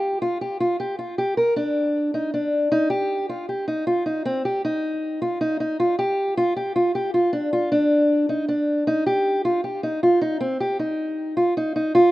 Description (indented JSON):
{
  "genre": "hip hop",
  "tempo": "156 BPM",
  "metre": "4/4",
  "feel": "half-time",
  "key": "unclear",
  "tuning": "A4 = 441 Hz",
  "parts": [
    { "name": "fingerpicked steel-string acoustic guitar", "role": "solo", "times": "0.0-12.1 s", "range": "C4 to Bb4", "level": "-20 LUFS", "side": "equal", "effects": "low-pass filter" }
  ],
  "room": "light reverb, small room reverb",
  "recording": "rough home demo mix",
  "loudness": "-20 LUFS",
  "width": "side -16 dB against mid",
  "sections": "0.0-2.7 A section; 2.7-12.1 B section",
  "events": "none",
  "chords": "none"
}